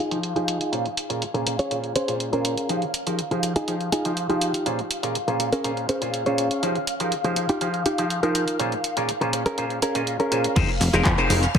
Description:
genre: filtered disco house.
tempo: 122 BPM.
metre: 4/4.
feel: straight.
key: F minor.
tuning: A4 = 440 Hz.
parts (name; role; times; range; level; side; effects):
phased string machine; sustained chords; 0.0-11.6 s; F5 to Ab6; -30 LUFS; equal; ensemble chorus, phaser, sidechain pumping, low-pass filter.
direct-recorded clean electric guitar; riff; 0.0-11.4 s; C4 to Db5; -26 LUFS; equal; sidechain pumping, low-pass filter, tape echo.
auto-wah clav; accompaniment; 0.1-11.6 s; Bb2 to Eb5; -27 LUFS; equal; overdrive, phaser, sidechain pumping, low-pass filter, tape echo.
punchy analog drum machine; drums; 0.1-11.6 s; crash cymbal, handclaps, hi-hat, rim click, shaker; -29 LUFS; right 1 dB; sidechain pumping on hats, low-pass filter on hats, sidechain pumping on cymbals, low-pass filter on cymbals, sidechain pumping on perc, low-pass filter on perc, low-pass filter on snare, low-pass filter on room, tape echo.
plucky analog bass; bass; 10.6-11.6 s; F1 to F2; -21 LUFS; equal; sidechain pumping, low-pass filter.
electronic kick drum; drums; 10.6-11.6 s; none; -23 LUFS; equal; none.
room: moderate spring reverb, RT60 1.8 s, digital ambience.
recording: echo-heavy mix.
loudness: -21 LUFS.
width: side -7 dB against mid.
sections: 0.0-10.6 A section; 10.6-11.6 B section.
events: filter sweep 0.0-10.6; drop 10.6-11.6.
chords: 0.0 Fm7; 0.7 Bbm7; 2.7 Fm7; 4.7 Bbm7; 6.6 Fm7; 8.6 Bbm7; 10.6 Fm7.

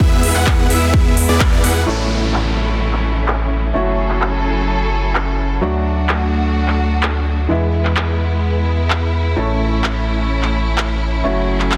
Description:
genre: EDM, festival progressive house.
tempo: 128 BPM.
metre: 4/4.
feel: straight.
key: A major.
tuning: A4 = 440 Hz.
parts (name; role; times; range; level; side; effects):
rich studio string section; sustained chords; 0.0-11.8 s; F#3 to A4; -25 LUFS; equal; sidechain pumping, low-pass filter.
unison lead; arpeggios; 0.0-1.8 s; D5 to F#5; -28 LUFS; equal; lush chorus, cassette tape, sidechain pumping, delay.
supersaw chords; riff; 0.0-1.8 s; B3 to F#5; -23 LUFS; equal; sidechain pumping, low-pass filter, delay.
saturated sub bass; bass; 0.0-11.8 s; F#1 to E2; -21 LUFS; equal; sidechain pumping.
electronic kick drum; drums; 0.0-1.5 s; none; -17 LUFS; equal; overdrive.
big-room dance drum kit; drums; 0.2-11.8 s; handclaps, hi-hat; -25 LUFS; equal; overdrive, low-pass filter on hats, low-pass filter on snare.
clear concert grand piano; accompaniment; 1.9-11.8 s; A2 to A4; -25 LUFS; equal; sidechain pumping, delay.
downlifter; sound effects; 1.9-5.6 s; none; -29 LUFS; equal; none.
room: light reverb, digital ambience.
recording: dense, heavily limited modern master.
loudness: -17 LUFS.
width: mono.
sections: 0.0-1.9 A section; 1.9-11.8 B section.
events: drop 0.0-1.9; band accent 1.4; filter sweep on drum 1.9-11.8.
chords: 0.0 E; 1.9 A; 3.7 F#m7; 5.6 D; 7.5 E; 9.4 A; 11.2 F#m7.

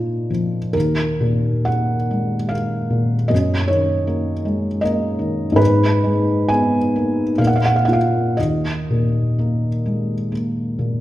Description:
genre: classical, romantic nocturne for solo piano.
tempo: 58-80 BPM.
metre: 3/4.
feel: rubato.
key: Eb minor.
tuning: A4 = 440 Hz.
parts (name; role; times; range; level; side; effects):
felt-muted upright piano; solo; 0.0-11.0 s; Eb2 to Ab5; -16 LUFS; equal; none.
room: wet recital hall reverb, RT60 1.5 s.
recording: none.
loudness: -16 LUFS.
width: side -14 dB against mid.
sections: 0.0-11.0 A section.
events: none.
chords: 0.0 Bb; 0.7 Ebm; 3.3 Ebm/Gb; 5.6 Abmadd9; 7.4 Bb5; 8.4 Eb5.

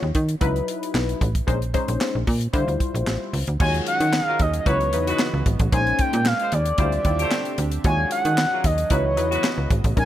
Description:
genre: early-eighties boogie funk.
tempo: 113 BPM.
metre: 4/4.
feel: straight.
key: unclear.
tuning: A4 = 440 Hz.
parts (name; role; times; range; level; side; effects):
funky polysynth comp; accompaniment; 0.0-10.1 s; Gb3 to D5; -27 LUFS; left 3 dB; chorus.
slap-like FM bass; bass; 0.0-10.1 s; Ab1 to Eb3; -23 LUFS; right 1 dB; none.
tight funk drum kit; drums; 0.1-10.1 s; crash cymbal, handclaps, hi-hat, kick drum, snare drum; -24 LUFS; equal; none.
expressive synth lead; melody; 3.6-10.1 s; Db5 to Ab5; -24 LUFS; equal; chorus, tape echo.
brassy analog pad; sustained chords; 3.6-10.1 s; Db3 to Eb5; -32 LUFS; right 1 dB; chorus.
clear horn section; second line; 4.3-9.7 s; Gb3 to C5; -30 LUFS; equal; none.
room: small room ambience.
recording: none.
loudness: -19 LUFS.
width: side -12 dB against mid.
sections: 0.0-3.6 A section; 3.6-10.1 B section.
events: none.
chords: 0.4 Dbm11; 1.5 Bbm11; 2.5 Dm11; 3.6 Ebm11; 4.7 Dbm11; 5.7 Bbm11; 6.8 Dm11; 7.8 Ebm11; 8.9 Dbm11.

